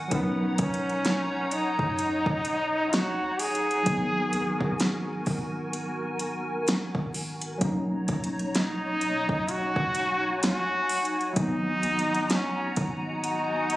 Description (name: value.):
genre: contemporary R&B.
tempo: 64 BPM.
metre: 4/4.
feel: swing 58% on 16ths.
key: B major.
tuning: A4 = 440 Hz.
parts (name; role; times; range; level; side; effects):
tine electric piano; accompaniment; 0.0-13.8 s; F#3 to A#4; -32 LUFS; equal; overdrive, fast stereo tremolo.
hollow soft pad; sustained chords; 0.0-13.8 s; D#4 to A#5; -34 LUFS; equal; ensemble chorus, sidechain pumping.
soft 808-style bass; bass; 0.0-13.8 s; G#1 to B2; -38 LUFS; equal; none.
brilliant trombone; melody; 0.1-13.8 s; B3 to G#4; -27 LUFS; equal; none.
smooth R&B drum kit; drums; 0.1-13.8 s; hi-hat, kick drum, snare drum; -29 LUFS; equal; overdrive.
room: light reverb, digital ambience.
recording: recorded on a phone in the room, studio reverb, compression.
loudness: -25 LUFS.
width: side -16 dB against mid.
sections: 0.0-13.8 A section.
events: none.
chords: 0.1 Bmaj9; 3.9 G#m9; 7.6 Bmaj9; 11.4 G#m9.